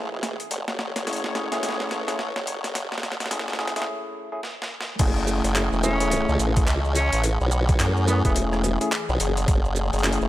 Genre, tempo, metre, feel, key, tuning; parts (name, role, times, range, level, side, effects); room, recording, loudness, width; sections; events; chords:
glitch hop; 107 BPM; 4/4; swing 61% on 16ths; F# minor; A4 = 442 Hz
warm analog pad; sustained chords; 0.0-10.3 s; E3 to C#5; -35 LUFS; left 3 dB; chorus, sidechain pumping
formant-sweep wobble bass; bass; 0.0-10.3 s; E1 to F#2; -24 LUFS; equal; chorus, tube saturation, high-pass filter
boom bap sampler-style drum kit; drums; 0.2-10.3 s; crash cymbal, handclaps, hi-hat, rim click, shaker, snare drum; -29 LUFS; equal; overdrive
tine electric piano; stabs; 1.1-10.3 s; A3 to G#4; -29 LUFS; left 1 dB; sidechain pumping, tape echo
electronic kick drum; drums; 5.0-9.6 s; -22 LUFS; equal; overdrive
breathy tenor saxophone; melody; 5.8-8.3 s; B3 to C#4; -30 LUFS; equal; tape echo
little or no reverb; high-pass filter; -22 LUFS; side -15 dB against mid
0.0-5.0 A section; 5.0-10.3 B section
build-up 0.0-5.0; drum fill 0.0-3.9, 4.4-5.0; filter sweep on tine electric piano 0.0-5.0; break 3.9-5.0; drop 5.0-10.3
0.0 F#m9